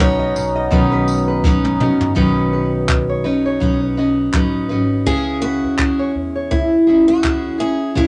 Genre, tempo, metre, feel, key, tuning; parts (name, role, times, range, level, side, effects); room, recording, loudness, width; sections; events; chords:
acoustic pop; 83 BPM; 4/4; swing 55% on 16ths; A4 = 440 Hz
picked old ladder-braced acoustic guitar; melody; 0.0-8.1 s; E4 to C#5; -20 LUFS; equal
picked steel-string acoustic guitar; accompaniment; 0.0-8.1 s; B2 to B4; -20 LUFS; equal
hand-pumped harmonium; sustained chords; 0.0-2.1 s; B3 to D#4; -27 LUFS; equal
upright bass; bass; 0.0-8.1 s; F#1 to E2; -28 LUFS; equal
jazz brush drum kit; drums; 0.0-8.1 s; handclaps, kick drum, snare drum, tambourine, toms; -21 LUFS; equal
nylon-string guitar; arpeggios; 0.2-7.1 s; B4 to E5; -30 LUFS; equal
moderate small room reverb, RT60 0.5 s; nothing above 10.6 kHz; -17 LUFS; mono
0.0-2.2 A section; 2.2-5.1 B section; 5.1-8.1 C section
drum fill 1.4-2.2
0.0 Badd9; 5.1 C#m